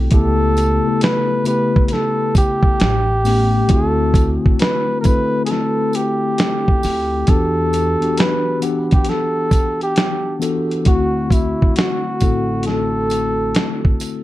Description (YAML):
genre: lo-fi hip hop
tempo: 67 BPM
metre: 4/4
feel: swing 65% on 16ths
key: unclear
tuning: A4 = 440 Hz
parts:
  - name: mellow tine electric piano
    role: accompaniment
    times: 0.0-14.2 s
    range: A2 to F#5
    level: -20 LUFS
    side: left 3 dB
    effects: slow stereo tremolo
  - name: upright bass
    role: bass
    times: 0.0-13.5 s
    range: A1 to E2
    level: -21 LUFS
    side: equal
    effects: none
  - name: trumpet with bucket mute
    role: melody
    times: 0.1-14.0 s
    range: E4 to B4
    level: -20 LUFS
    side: right 1 dB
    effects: analog delay
  - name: dusty soul sampler-style drum kit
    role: drums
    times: 0.1-14.2 s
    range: hi-hat, kick drum, snare drum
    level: -16 LUFS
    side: equal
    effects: none
  - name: tambourine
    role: percussion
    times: 0.6-14.2 s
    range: none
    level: -36 LUFS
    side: right 6 dB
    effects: none
room: moderate small room reverb, RT60 0.5 s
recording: dark, warm production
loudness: -14 LUFS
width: side -15 dB against mid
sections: 0.0-10.9 A section; 10.9-14.2 B section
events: none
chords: 0.1 A7/C#; 2.8 A7; 3.7 D7; 7.3 Em7; 10.9 D7